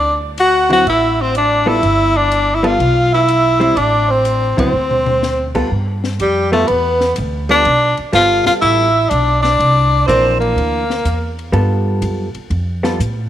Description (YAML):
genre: jazz, small-group swing and bop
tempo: 124 BPM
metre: 4/4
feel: swing 68% on 8ths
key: G mixolydian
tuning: A4 = 441 Hz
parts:
  - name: clear tenor saxophone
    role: melody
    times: 0.0-11.3 s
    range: G3 to F#4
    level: -14 LUFS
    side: left 2 dB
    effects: none
  - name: breathy alto saxophone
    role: second line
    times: 0.0-11.3 s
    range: G4 to F#5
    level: -20 LUFS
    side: right 10 dB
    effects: none
  - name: upright bass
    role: bass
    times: 0.0-13.3 s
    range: G1 to A2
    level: -19 LUFS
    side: right 1 dB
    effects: none
  - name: compact cocktail drum kit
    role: drums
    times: 0.4-13.2 s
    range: crash cymbal, hi-hat, kick drum, ride cymbal, snare drum, toms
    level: -28 LUFS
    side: left 4 dB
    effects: none
  - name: vintage hollow-body jazz guitar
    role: accompaniment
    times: 0.7-13.0 s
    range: D3 to A4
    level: -20 LUFS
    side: equal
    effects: none
room: moderate echo chamber reverb, RT60 2.1 s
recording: 1960s-style stereo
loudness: -12 LUFS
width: side -11 dB against mid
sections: 0.0-5.7 A section; 5.7-13.3 A section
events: band accent 4.5; drum fill 4.7-5.2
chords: 0.0 Dadd9; 1.8 G7; 3.8 Am; 4.7 D5; 5.7 G9; 9.6 C9; 11.5 G9